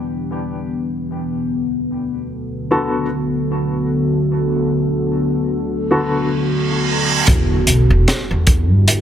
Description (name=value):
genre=trip hop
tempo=75 BPM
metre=4/4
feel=swing 59% on 16ths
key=E minor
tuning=A4 = 440 Hz
part: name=deep dark ambient pad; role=sustained chords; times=0.0-9.0 s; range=D3 to A4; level=-19 LUFS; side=left 1 dB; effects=chorus, built-in reverb, vintage 12-bit sampler grit
part: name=warm upright piano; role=accompaniment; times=2.7-6.3 s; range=D3 to A4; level=-21 LUFS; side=left 1 dB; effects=tremolo, tape echo
part: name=reverse cymbal and impact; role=sound effects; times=6.3-9.0 s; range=none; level=-22 LUFS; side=right 3 dB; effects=none
part: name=upright bass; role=bass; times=7.3-8.9 s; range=E1 to G2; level=-14 LUFS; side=equal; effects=none
part: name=crunchy breakbeat drum kit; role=drums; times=7.3-9.0 s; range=hi-hat, kick drum, snare drum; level=-15 LUFS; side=equal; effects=none
room=light reverb, studio ambience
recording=none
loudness=-15 LUFS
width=side -10 dB against mid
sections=0.0-7.3 A section; 7.3-9.0 B section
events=reverse cymbal 6.3-7.3; impact 7.3-9.0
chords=0.0 Em7; 0.9 Bm7/D; 7.3 Em7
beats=0.08 | 0.88 1.68 2.48 3.28 | 4.08 4.88 5.68 6.48 | 7.28 8.08 8.88